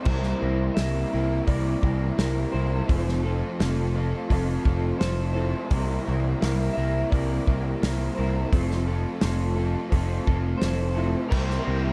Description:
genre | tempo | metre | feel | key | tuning
rock, shoegaze and dream pop | 85 BPM | 4/4 | straight | C mixolydian | A4 = 440 Hz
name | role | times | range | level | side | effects
electric guitar through a small old amp | melody | 0.0-11.9 s | C5 to E5 | -38 LUFS | equal | subtle chorus, analog delay
electric guitar through a small old amp | riff | 0.0-11.9 s | C3 to Bb4 | -33 LUFS | equal | reverse reverb
overdriven electric guitar | riff | 0.0-11.9 s | C3 to Bb4 | -35 LUFS | equal | ensemble chorus
overdriven picked electric bass | bass | 0.1-11.9 s | F1 to C2 | -28 LUFS | equal | none
loose indie drum kit | drums | 0.1-11.6 s | crash cymbal, hi-hat, kick drum, snare drum | -28 LUFS | equal | none
soft string machine | sustained chords | 11.3-11.9 s | Bb4 to C6 | -39 LUFS | equal | ensemble chorus
distorted electric guitar | riff | 11.3-11.9 s | C3 to C4 | -37 LUFS | equal | overdrive
room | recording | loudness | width
small room ambience | dark, warm production | -25 LUFS | mono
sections
0.0-11.9 A section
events
none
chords
0.1 C7; 2.9 Fmaj7; 5.7 C7; 8.5 Fmaj7; 11.3 C7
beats
| 0.07 0.77 1.48 2.18 | 2.89 3.59 4.30 5.00 | 5.70 6.41 7.11 7.81 | 8.51 9.21 9.91 10.62 | 11.32

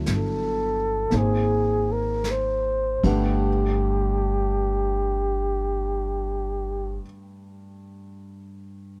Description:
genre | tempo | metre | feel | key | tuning
jazz ballad | 47-59 BPM | 4/4 | swing 66% on 8ths | G major | A4 = 441 Hz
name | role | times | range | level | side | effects
warm baby grand piano | accompaniment | 0.0-9.0 s | G2 to F#5 | -32 LUFS | equal | none
upright bass | bass | 0.0-7.0 s | G1 to Ab1 | -29 LUFS | equal | none
breathy flugelhorn | melody | 0.1-7.0 s | G4 to C5 | -28 LUFS | equal | none
jazz brush drum kit | drums | 0.1-3.2 s | brushed snare drum, hi-hat, kick drum, ride cymbal, snare drum | -38 LUFS | equal | none
room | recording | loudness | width
small room ambience | none | -24 LUFS | mono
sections
0.0-3.5 A section; 3.5-8.5 B section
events
slowing down 0.0-3.5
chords
0.0 D (rootless); 1.1 Ab; 2.9 Gmaj9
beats
0.07 1.12 2.25 | 3.48 4.74 5.99 7.25

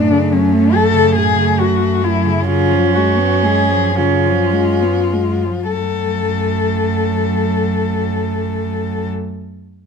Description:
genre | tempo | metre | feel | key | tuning
classical, lyrical piece for cello ensemble | 31-50 BPM (dotted quarters) | 6/8 | rubato | F# minor | A4 = 445 Hz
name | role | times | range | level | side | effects
dark cello | melody | 0.0-9.1 s | C#4 to A4 | -17 LUFS | left 7 dB | none
warm cello | second line | 0.0-9.1 s | A3 to C#4 | -20 LUFS | right 11 dB | none
warm cello | accompaniment | 0.0-9.1 s | A2 to B3 | -22 LUFS | left 2 dB | none
clear cello | bass | 0.0-9.1 s | F#2 | -20 LUFS | right 2 dB | none
room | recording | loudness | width
light reverb | minimal, uncompressed stereo recording | -13 LUFS | side -6 dB against mid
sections
0.0-5.8 A section; 5.8-9.2 B section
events
slowing down 0.0-5.8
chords
0.0 F#m; 2.5 C#7/F#; 5.8 F#m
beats
1.15 | 2.47 3.96 | 5.75 7.49

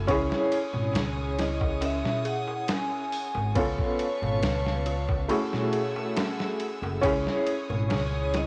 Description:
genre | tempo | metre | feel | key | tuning
trip hop | 69 BPM | 4/4 | straight | C# minor | A4 = 441 Hz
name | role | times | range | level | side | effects
felt-muted upright piano | accompaniment | 0.0-8.5 s | A3 to C#5 | -31 LUFS | equal | tremolo, cassette tape, tape echo
warm chamber violin section | sustained chords | 0.0-8.5 s | A3 to E6 | -40 LUFS | equal | cassette tape
dark detuned synth bell | arpeggios | 0.0-8.5 s | C#4 to B4 | -39 LUFS | equal | chorus, tremolo, cassette tape, tape echo
upright bass | bass | 0.0-8.5 s | F#1 to C#2 | -33 LUFS | equal | tube saturation
boom bap sampler-style drum kit | drums | 0.1-8.5 s | hi-hat, kick drum, ride cymbal, snare drum | -35 LUFS | equal | cassette tape
darbuka | percussion | 0.1-8.3 s | none | -39 LUFS | equal | none
vibraphone with medium hard mallets | melody | 1.4-8.5 s | C#5 to G#5 | -36 LUFS | equal | vintage 12-bit sampler grit, cassette tape, tape echo
room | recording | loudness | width
light reverb, small room reverb | home recording on cassette | -28 LUFS | mono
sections
0.0-8.5 A section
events
none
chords
0.1 C#madd9; 3.6 C#7b13; 5.3 F#m9; 7.0 C#madd9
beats
| 0.08 0.95 1.82 2.69 | 3.56 4.43 5.30 6.17 | 7.04 7.91

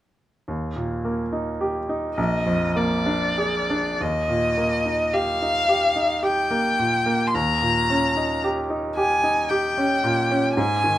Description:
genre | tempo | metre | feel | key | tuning
classical, romantic duo for violin and grand piano | 46-57 BPM | 3/4 | rubato | Eb major | A4 = 440 Hz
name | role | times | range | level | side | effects
bright grand piano | accompaniment | 0.5-11.0 s | Bb1 to Ab4 | -23 LUFS | right 1 dB | none
rich violin | melody | 2.2-11.0 s | D5 to C6 | -22 LUFS | left 1 dB | none
room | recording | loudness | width
light reverb | none | -20 LUFS | side -13 dB against mid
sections
0.5-4.0 A section; 4.0-11.0 B section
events
none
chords
0.5 Eb; 2.2 Bb7; 4.0 Eb; 7.3 Eb7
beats
| 0.49 1.61 2.77 | 4.01 5.13 6.23 | 7.34 8.44 9.51 | 10.56

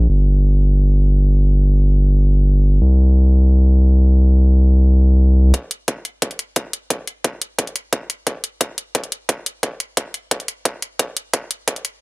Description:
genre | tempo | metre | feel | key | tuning
liquid drum and bass | 176 BPM | 4/4 | straight | unclear | A4 = 439 Hz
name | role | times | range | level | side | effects
saturated sub bass | bass | 0.0-5.5 s | G1 to C2 | -11 LUFS | equal | tube saturation
electronic hi-hat | drums | 5.5-11.9 s | none | -21 LUFS | left 1 dB | overdrive, high-pass filter on hats, high-pass filter on room
electronic kick drum | drums | 5.5-11.7 s | none | -23 LUFS | equal | high-pass filter on kick
room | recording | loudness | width
little or no reverb | none | -14 LUFS | side -28 dB against mid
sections
0.0-5.5 A section; 5.5-12.0 B section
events
build-up 5.5-12.0; drum fill 11.0-12.0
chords
none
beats
| 0.09 0.43 0.77 1.11 | 1.45 1.79 2.13 2.47 | 2.81 3.15 3.50 3.84 | 4.18 4.52 4.86 5.20 | 5.54 5.88 6.22 6.56 | 6.90 7.25 7.59 7.93 | 8.27 8.61 8.95 9.29 | 9.63 9.97 10.31 10.65 | 10.99 11.34 11.68

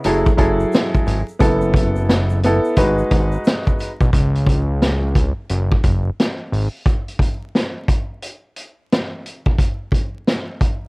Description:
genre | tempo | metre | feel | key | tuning
hip hop, boom-bap hip-hop | 88 BPM | 4/4 | swing 62% on 16ths | unclear | A4 = 440 Hz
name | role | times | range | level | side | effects
warm upright piano | accompaniment | 0.0-3.9 s | F#3 to B4 | -18 LUFS | equal | none
fat analog bass | bass | 0.0-6.7 s | F#1 to C#2 | -18 LUFS | equal | none
vintage drum kit | drums | 0.0-10.8 s | hi-hat, kick drum, snare drum | -17 LUFS | equal | none
tube shaker | percussion | 0.0-4.1 s | none | -50 LUFS | left 2 dB | none
room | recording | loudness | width
little or no reverb | worn, warbling old tape, cassette tape, vinyl crackle, warbly pitch drift | -16 LUFS | side -28 dB against mid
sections
0.0-4.1 A section; 4.1-10.9 B section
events
break 6.9-10.9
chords
0.0 F#m9; 1.4 B7sus4/F#; 2.8 G#m7; 4.1 N.C.; 5.5 F#sus2; 6.9 N.C.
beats
0.04 0.73 | 1.41 2.09 2.77 3.45 | 4.13 4.82 5.50 6.18 | 6.86 7.54 8.23 8.91 | 9.59 10.27

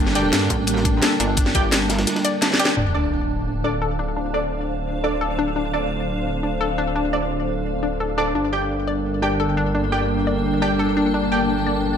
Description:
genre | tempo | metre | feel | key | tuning
dark technical drum and bass | 172 BPM | 4/4 | straight | D minor | A4 = 440 Hz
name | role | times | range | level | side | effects
dark analog pad | sustained chords | 0.0-12.0 s | G3 to F5 | -27 LUFS | right 1 dB | chorus, sidechain pumping
analog pluck | arpeggios | 0.0-11.7 s | D4 to D5 | -27 LUFS | left 4 dB | chorus, sidechain pumping, ping-pong delay
phased detuned saw bass | bass | 0.0-0.5, 2.8-12.0 s | D1 to G2 | -26 LUFS | equal | phaser, overdrive
granular cloud pad | texture | 0.0-12.0 s | Bb3 to A5 | -26 LUFS | equal | built-in reverb, sidechain pumping
crunchy breakbeat drum kit | drums | 0.1-2.7 s | ride cymbal, snare drum | -30 LUFS | equal | none
drum and bass drum kit | drums | 0.1-2.7 s | hi-hat, snare drum | -21 LUFS | equal | low-pass filter on hats, low-pass filter on snare, low-pass filter on room
orchestra-hit-like synth stab | stabs | 0.2-11.4 s | D4 to G5 | -26 LUFS | right 1 dB | built-in reverb, ping-pong delay
pulsing pluck wobble bass | bass | 0.5-2.1 s | G1 to A1 | -23 LUFS | equal | chorus
electronic kick drum | drums | 0.5-1.6 s | none | -22 LUFS | equal | none
sub drop and riser | sound effects | 2.8-4.2, 11.6-12.0 s | none | -28 LUFS | equal | none
room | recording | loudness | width
moderate digital room reverb, RT60 1.2 s | none | -19 LUFS | side -8 dB against mid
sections
0.0-2.8 A section; 2.8-12.0 B section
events
drum fill 2.4-2.8; band accent 2.7; impact 2.8-4.2; filter sweep on synth arpeggio sound 2.8-12.0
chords
0.0 Gmadd9; 2.8 Dm7; 8.4 Gmadd9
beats
0.33 0.68 1.02 | 1.37 1.72 2.07 2.42 | 2.77 3.12 3.47 3.82 | 4.17 4.51 4.86 5.21 | 5.56 5.91 6.26 6.61 | 6.96 7.30 7.65 8.00 | 8.35 8.70 9.05 9.40 | 9.75 10.10 10.44 10.79 | 11.14 11.49 11.84

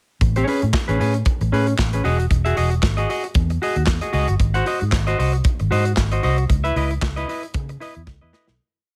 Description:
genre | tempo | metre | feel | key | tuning
disco | 115 BPM | 4/4 | swing 56% on 16ths | C# minor | A4 = 440 Hz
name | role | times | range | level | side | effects
semi-hollow electric guitar | accompaniment | 0.2-8.5 s | C#4 to F#5 | -25 LUFS | equal | none
vintage muted fingered electric bass | bass | 0.2-8.6 s | E1 to C#3 | -23 LUFS | equal | none
modern studio drum kit | drums | 0.2-8.6 s | handclaps, hi-hat, kick drum, snare drum | -24 LUFS | equal | none
room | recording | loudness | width
studio reverb | none | -20 LUFS | mono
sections
0.2-8.6 verse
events
fade-out 6.5-8.6; drum fill 8.1-8.6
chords
0.2 Amaj9; 2.0 Emaj9; 4.4 G#7; 6.5 C#m9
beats
| 0.21 0.73 1.26 1.78 | 2.31 2.83 3.35 3.88 | 4.40 4.92 5.45 5.97 | 6.50 7.02 7.54 8.07

